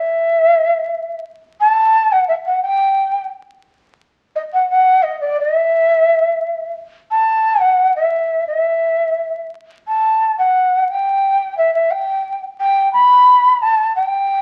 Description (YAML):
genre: andean folk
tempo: 87 BPM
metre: 2/4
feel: straight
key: E minor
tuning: A4 = 440 Hz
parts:
  - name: large quena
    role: solo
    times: 0.0-14.4 s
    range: D5 to B5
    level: -15 LUFS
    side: equal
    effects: none
room: wet studio reverb, RT60 0.8 s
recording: very old 78 rpm record, vinyl crackle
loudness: -15 LUFS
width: mono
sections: 0.0-9.9 A section; 9.9-14.4 B section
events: none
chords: none